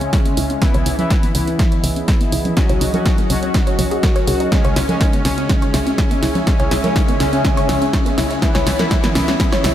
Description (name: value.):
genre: melodic techno.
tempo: 123 BPM.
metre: 4/4.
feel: straight.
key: unclear.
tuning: A4 = 440 Hz.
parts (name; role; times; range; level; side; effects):
deep dark ambient pad; sustained chords; 0.0-9.7 s; C#4 to G#5; -25 LUFS; right 1 dB; chorus, built-in reverb, sidechain pumping.
tight sequenced synth; arpeggios; 0.0-9.7 s; A#3 to E5; -24 LUFS; equal; chorus, cassette tape, sidechain pumping, diffuse ambient delay.
analog synth brass; stabs; 0.0-9.7 s; C#3 to F#4; -21 LUFS; left 2 dB; chorus, sidechain pumping, diffuse ambient delay.
tight sequencer bass; bass; 0.0-9.7 s; C#2; -23 LUFS; equal; sidechain pumping.
punchy analog drum machine; drums; 0.0-9.7 s; congas, hi-hat, snare drum; -22 LUFS; right 1 dB; none.
electronic kick drum; drums; 0.1-9.5 s; none; -17 LUFS; equal; none.
room: moderate lush hall reverb, RT60 2.0 s.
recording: dreamy mix soaked in reverb.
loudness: -14 LUFS.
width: side -11 dB against mid.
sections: 0.0-9.7 A section.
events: build-up 0.0-9.7; drum fill 0.0-9.7; filter sweep on synth arpeggio sound 0.0-9.7.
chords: 0.0 Emaj7/C#; 2.6 F#6/C#; 4.5 Emaj7/C#.